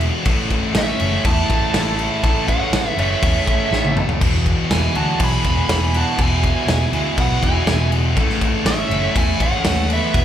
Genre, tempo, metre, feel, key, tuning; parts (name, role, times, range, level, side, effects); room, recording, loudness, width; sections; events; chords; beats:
hard rock; 122 BPM; 4/4; straight; A4 = 439 Hz
heavy high-gain guitar; riff; 0.0-10.2 s; E2 to A3; -28 LUFS; right 9 dB; distortion, slapback echo
raw garage guitar; riff; 0.0-10.2 s; E2 to A3; -27 LUFS; left 2 dB; overdrive, spring reverb
scooped high-gain guitar; riff; 0.0-10.2 s; E2 to A3; -27 LUFS; left 10 dB; distortion
picked electric bass; bass; 0.0-10.2 s; E1 to E2; -22 LUFS; equal
big rock drum kit; drums; 0.0-10.2 s; crash cymbal, kick drum, snare drum, toms; -19 LUFS; left 1 dB
dark smooth lead guitar; melody; 0.8-10.2 s; E5 to B5; -23 LUFS; right 3 dB; overdrive, slapback echo
octave-fuzz lead guitar; second line; 0.8-10.2 s; B3 to G#4; -28 LUFS; right 3 dB; distortion, slapback echo
little or no reverb; live gig heard through the venue's PA, club reverb; -15 LUFS; side -10 dB against mid
0.0-10.2 A section
drum fill 3.7-4.2
0.3 A; 4.2 E; 8.2 A
| 0.26 0.76 1.25 1.75 | 2.24 2.73 3.23 3.72 | 4.21 4.71 5.20 5.70 | 6.19 6.68 7.18 7.67 | 8.17 8.66 9.16 9.65 | 10.15